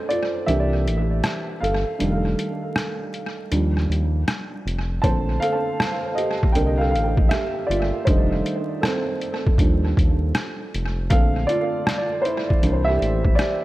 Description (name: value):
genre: lo-fi hip hop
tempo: 79 BPM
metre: 4/4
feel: swing 65% on 16ths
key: Bb major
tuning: A4 = 438 Hz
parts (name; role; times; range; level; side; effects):
- dark upright piano; accompaniment; 0.0-13.6 s; D3 to A5; -23 LUFS; right 1 dB; cassette tape, low-pass filter, tape echo
- trip hop sampler-style drum kit; drums; 0.1-13.6 s; hi-hat, kick drum, rim click; -23 LUFS; equal; tape echo
- round analog bass; bass; 0.5-13.4 s; F1 to Eb2; -22 LUFS; equal; none
room: light reverb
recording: echo-heavy mix, vinyl crackle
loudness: -19 LUFS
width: side -17 dB against mid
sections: 0.0-13.6 A section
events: break 0.0-5.0; upright piano solo 0.0-13.6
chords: 0.5 C9; 2.0 F13; 3.5 Ebmaj9; 5.0 Bbmaj9; 6.6 Csus2; 8.1 F13; 11.1 Bbmaj9; 12.6 C9